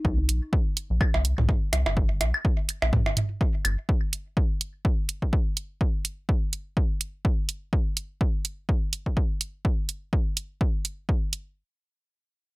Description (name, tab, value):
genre	minimal techno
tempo	125 BPM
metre	4/4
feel	swing 56% on 16ths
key	unclear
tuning	A4 = 440 Hz
part	rubbery square bass	bass	0.0-3.8 s	G1 to C2	-25 LUFS	equal	sidechain pumping
part	electronic kick drum	drums	0.0-11.2 s	none	-24 LUFS	equal	none
part	electronic hi-hat	drums	0.3-11.4 s	none	-26 LUFS	right 4 dB	none
part	electronic claves, percussion blips and toms	percussion	1.0-3.8 s	none	-27 LUFS	right 2 dB	overdrive, digital delay
room	little or no reverb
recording	none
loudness	-24 LUFS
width	side -22 dB against mid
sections	0.0-11.6 A section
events	none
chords	none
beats	| 0.05 0.53 1.01 1.49 | 1.97 2.45 2.93 3.41 | 3.89 4.37 4.85 5.33 | 5.81 6.29 6.77 7.25 | 7.73 8.21 8.69 9.17 | 9.65 10.13 10.61 11.09